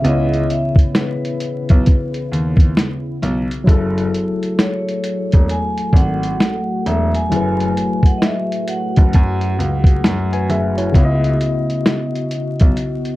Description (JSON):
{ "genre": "lo-fi hip hop", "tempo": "66 BPM", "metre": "4/4", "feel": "swing 62% on 16ths", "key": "unclear", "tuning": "A4 = 444 Hz", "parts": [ { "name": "tine electric piano", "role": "accompaniment", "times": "0.0-13.2 s", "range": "C#3 to G#5", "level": "-21 LUFS", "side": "left 2 dB", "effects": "medium stereo tremolo, cassette tape, low-pass filter" }, { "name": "deep dark ambient pad", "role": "sustained chords", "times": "0.0-13.2 s", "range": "C#3 to F#4", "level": "-27 LUFS", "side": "left 1 dB", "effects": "chorus, built-in reverb, low-pass filter" }, { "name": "warm grand piano", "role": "bass", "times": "0.0-12.7 s", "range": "E1 to F#2", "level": "-20 LUFS", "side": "equal", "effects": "none" }, { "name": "lo-fi sampler-style drum kit", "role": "drums", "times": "0.0-13.2 s", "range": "hi-hat, kick drum, snare drum", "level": "-14 LUFS", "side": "equal", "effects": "none" }, { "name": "vibraphone with medium hard mallets", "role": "melody", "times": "0.1-10.5 s", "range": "B4 to G#5", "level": "-24 LUFS", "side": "right 1 dB", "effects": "low-pass filter, analog delay" } ], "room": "light reverb", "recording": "dark, warm production, vinyl crackle", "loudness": "-14 LUFS", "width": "side -17 dB against mid", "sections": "0.0-13.2 A section", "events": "none", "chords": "0.0 C#m7; 3.7 F#m9; 10.9 C#m9" }